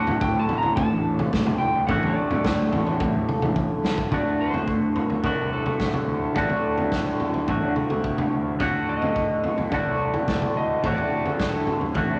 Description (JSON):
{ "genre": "psychedelic rock", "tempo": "107 BPM", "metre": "4/4", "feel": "straight", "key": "D major", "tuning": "A4 = 440 Hz", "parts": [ { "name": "electric slide guitar", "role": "melody", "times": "0.0-11.9 s", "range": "A4 to Bb5", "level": "-31 LUFS", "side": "equal", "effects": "none" }, { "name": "twangy electric guitar", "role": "riff", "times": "0.0-12.2 s", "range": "D2 to F#4", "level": "-27 LUFS", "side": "equal", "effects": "phaser" }, { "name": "fuzz fingered electric bass", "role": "bass", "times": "0.1-12.2 s", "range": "D1 to D3", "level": "-33 LUFS", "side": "equal", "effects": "overdrive" }, { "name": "raw garage drum kit", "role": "drums", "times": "0.1-12.1 s", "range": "kick drum, snare drum, toms", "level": "-29 LUFS", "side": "equal", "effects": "none" }, { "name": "congas", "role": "percussion", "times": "0.4-4.1 s", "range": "none", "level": "-38 LUFS", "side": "equal", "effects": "none" } ], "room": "wet club reverb, RT60 0.6 s", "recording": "none", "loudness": "-24 LUFS", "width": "mono", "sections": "0.0-4.1 A section; 4.1-12.2 B section", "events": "electric slide guitar solo 0.0-4.1; drum fill 3.4-4.1", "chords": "0.0 D" }